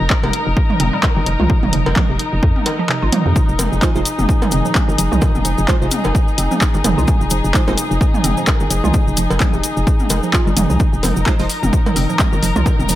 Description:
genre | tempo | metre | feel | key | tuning
minimal techno | 129 BPM | 4/4 | swing 57% on 16ths | F minor | A4 = 440 Hz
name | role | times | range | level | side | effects
hollow knocking FM bass | bass | 0.0-13.0 s | F1 to F2 | -18 LUFS | equal | sidechain pumping
muted chamber string section | texture | 0.0-13.0 s | Eb4 to Bb4 | -22 LUFS | left 2 dB | sidechain pumping
hollow square pluck | riff | 0.1-13.0 s | C3 to F4 | -25 LUFS | right 3 dB | chorus, sidechain pumping, tape echo
electronic kick drum | drums | 0.1-12.8 s | none | -16 LUFS | equal | none
punchy analog drum machine | drums | 0.1-13.0 s | handclaps, hi-hat | -22 LUFS | equal | none
electronic toms and cowbell | percussion | 0.2-12.9 s | none | -22 LUFS | right 2 dB | overdrive, tape echo
cabasa | percussion | 3.4-13.0 s | none | -27 LUFS | left 3 dB | none
wavetable chord stab | stabs | 3.8-7.7, 11.3-11.5 s | Ab3 to C5 | -26 LUFS | right 4 dB | tape echo
room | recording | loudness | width
light reverb, digital ambience | none | -13 LUFS | side -14 dB against mid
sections
0.0-13.0 A section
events
kick drops out 2.9-3.4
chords
0.0 Fm7

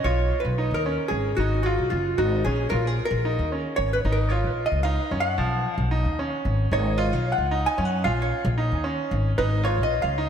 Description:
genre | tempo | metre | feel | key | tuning
progressive instrumental, band music in an uneven meter | 112 BPM | 5/4 | straight | Bb phrygian | A4 = 440 Hz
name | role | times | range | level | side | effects
hollow-body jazz guitar | melody | 0.0-10.3 s | F4 to Ab5 | -26 LUFS | equal | wide subtle chorus, tape echo
upright bass | bass | 0.0-10.3 s | F#1 to Gb2 | -25 LUFS | equal | none
bright grand piano | arpeggios | 0.1-10.3 s | F3 to F4 | -29 LUFS | right 2 dB | none
room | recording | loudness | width
moderate lush hall reverb, RT60 2.8 s | dreamy mix soaked in reverb | -22 LUFS | side -8 dB against mid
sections
0.0-10.3 A section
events
hollow-body jazz guitar solo 0.0-10.3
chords
0.0 Bsus2; 2.7 Bbm7; 5.4 Bsus2; 8.0 Bbm7

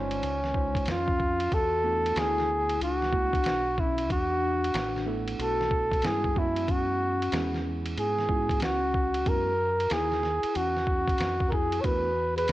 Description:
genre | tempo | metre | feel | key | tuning
hip hop, jazz-hop | 93 BPM | 4/4 | swing 63% on 16ths | unclear | A4 = 441 Hz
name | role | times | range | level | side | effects
mellow flugelhorn | melody | 0.0-12.5 s | Db4 to Db5 | -27 LUFS | right 1 dB | cassette tape
vibraphone with soft mallets | second line | 0.0-12.5 s | Ab3 to Bb4 | -35 LUFS | left 7 dB | cassette tape
mellow tine electric piano | accompaniment | 0.0-12.1 s | Ab3 to C5 | -36 LUFS | right 6 dB | medium stereo tremolo, cassette tape
deep dub fingered electric bass | bass | 0.0-12.5 s | G1 to Ab2 | -34 LUFS | equal | none
lo-fi sampler-style drum kit | drums | 0.1-12.5 s | hi-hat, kick drum, ride cymbal, snare drum | -32 LUFS | equal | cassette tape
room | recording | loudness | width
little or no reverb | home recording on cassette | -25 LUFS | side -16 dB against mid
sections
0.0-1.5 A section; 1.5-12.5 B section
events
none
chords
0.2 Dbmaj9; 1.5 E9sus4; 6.4 Gb9sus4; 11.8 E9sus4

